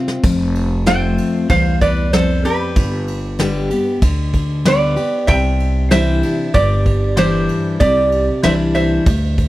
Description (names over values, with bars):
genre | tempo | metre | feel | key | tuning
honky-tonk and classic country | 95 BPM | 4/4 | straight | C major | A4 = 440 Hz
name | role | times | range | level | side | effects
picked steel-string acoustic guitar | accompaniment | 0.0-9.5 s | E2 to G4 | -18 LUFS | left 2 dB | none
soft brush drum kit | drums | 0.1-9.5 s | crash cymbal, kick drum, ride cymbal, snare drum | -20 LUFS | equal | none
upright bass | bass | 0.2-9.5 s | F1 to D2 | -19 LUFS | equal | none
lap resonator guitar | melody | 0.9-9.5 s | G4 to G5 | -18 LUFS | right 2 dB | none
room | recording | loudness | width
little or no reverb | dry, close 1970s-style studio recording | -13 LUFS | side -16 dB against mid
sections
0.2-9.5 A section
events
break 0.0; drum fill 0.0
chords
0.2 F; 2.8 G; 5.3 Cadd9